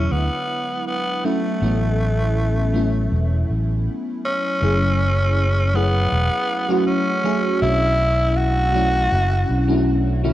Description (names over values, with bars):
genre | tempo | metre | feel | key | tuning
vaporwave | 80 BPM | 4/4 | straight | unclear | A4 = 440 Hz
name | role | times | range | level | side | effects
growling tenor saxophone | melody | 0.0-10.3 s | A3 to F#4 | -22 LUFS | equal | vintage 12-bit sampler grit, tape echo
FM electric piano with soft pad layer | accompaniment | 0.0-10.3 s | D3 to G#4 | -23 LUFS | equal | phaser, lush chorus, tape echo
fingered electric bass | bass | 0.0-10.3 s | E1 to D2 | -19 LUFS | equal | none
room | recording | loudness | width
light reverb, small room ambience | cassette tape | -17 LUFS | side -14 dB against mid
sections
0.0-4.6 A section; 4.6-10.3 B section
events
stop 3.9-4.6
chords
0.0 E9; 1.2 A69; 4.6 F#m7; 7.6 Bm11